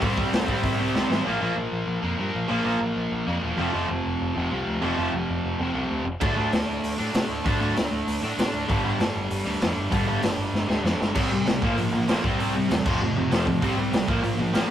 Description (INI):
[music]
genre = punk rock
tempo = 194 BPM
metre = 4/4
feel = straight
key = unclear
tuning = A4 = 437 Hz
[part]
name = crunchy overdriven guitar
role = riff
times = 0.0-14.7 s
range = F2 to E4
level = -30 LUFS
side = left 4 dB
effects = none
[part]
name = distorted electric guitar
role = riff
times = 0.0-14.7 s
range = F2 to D4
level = -27 LUFS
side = equal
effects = distortion
[part]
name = tight distorted guitar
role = riff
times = 0.0-14.7 s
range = F2 to D4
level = -29 LUFS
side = right 4 dB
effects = distortion
[part]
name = growling picked electric bass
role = bass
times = 0.0-14.6 s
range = E1 to C3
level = -31 LUFS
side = equal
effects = overdrive
[part]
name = raw garage drum kit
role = drums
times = 0.0-1.2, 6.2-14.6 s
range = crash cymbal, hi-hat, kick drum, snare drum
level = -26 LUFS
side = equal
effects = none
[sound]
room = light reverb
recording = rough rehearsal-room recording, warm saturation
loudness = -22 LUFS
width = side -10 dB against mid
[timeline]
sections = 0.0-1.3 A section; 1.3-11.2 B section; 11.2-14.7 C section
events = drum fill 0.9-1.3, 10.5-11.2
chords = 0.0 C; 1.3 Bb; 3.6 F; 6.2 D; 8.7 G; 11.2 C5; 11.6 Bb; 12.2 C; 12.8 F; 13.6 C5; 14.1 Bb